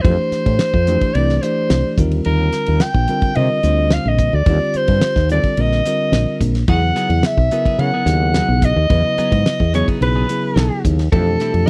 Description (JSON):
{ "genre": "electric jazz fusion", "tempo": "108 BPM", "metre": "4/4", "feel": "straight", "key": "unclear", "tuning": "A4 = 440 Hz", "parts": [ { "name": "clear soprano saxophone", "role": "melody", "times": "0.0-11.7 s", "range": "A4 to G5", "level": "-22 LUFS", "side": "equal", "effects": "slapback echo" }, { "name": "bell-like tine electric piano", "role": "accompaniment", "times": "0.0-11.7 s", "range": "B2 to D5", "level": "-24 LUFS", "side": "equal", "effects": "none" }, { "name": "woody fretless electric bass", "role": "bass", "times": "0.0-11.7 s", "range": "Bb1 to Db3", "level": "-19 LUFS", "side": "equal", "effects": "none" }, { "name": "damped 70s drum kit", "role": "drums", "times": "0.0-11.7 s", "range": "hi-hat, kick drum, ride cymbal, snare drum", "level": "-21 LUFS", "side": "equal", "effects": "none" }, { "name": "clean electric guitar", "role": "stabs", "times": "6.7-11.6 s", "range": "F#3 to A4", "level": "-30 LUFS", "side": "equal", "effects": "lush chorus" } ], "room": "little or no reverb", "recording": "dry, close 1970s-style studio recording", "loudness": "-16 LUFS", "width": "mono", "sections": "0.0-11.7 A section", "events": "none", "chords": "0.0 Fmaj9; 2.0 Ebmaj9; 6.7 Emaj9; 11.1 Fmaj9", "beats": "| 0.05 0.60 1.15 1.71 | 2.26 2.81 3.37 3.92 | 4.47 5.03 5.58 6.13 | 6.69 7.24 7.79 8.35 | 8.90 9.46 10.02 10.57 | 11.13 11.68" }